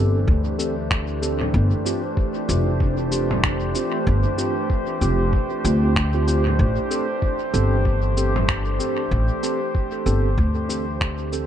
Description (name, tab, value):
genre	ambient dub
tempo	95 BPM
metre	4/4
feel	swing 59% on 16ths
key	unclear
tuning	A4 = 440 Hz
part	warbly tape-like pad	sustained chords	0.0-11.5 s	E3 to C5	-25 LUFS	equal	chorus, built-in reverb
part	mellow tine electric piano	stabs	0.0-11.5 s	C4 to A4	-28 LUFS	right 3 dB	medium stereo tremolo, dub echo
part	upright bass	bass	0.0-11.5 s	F1 to D2	-21 LUFS	equal	tube saturation
part	electronic kick drum	drums	0.3-11.2 s	none	-22 LUFS	equal	none
part	lo-fi sampler-style drum kit	drums	0.6-11.5 s	cabasa, finger snaps, toms	-27 LUFS	equal	dub echo
room	light reverb, digital ambience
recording	nothing above 10.3 kHz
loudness	-19 LUFS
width	side -10 dB against mid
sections	0.0-11.5 A section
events	fade-out 10.0-11.5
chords	0.0 Am7; 1.5 G7sus4; 6.6 Am7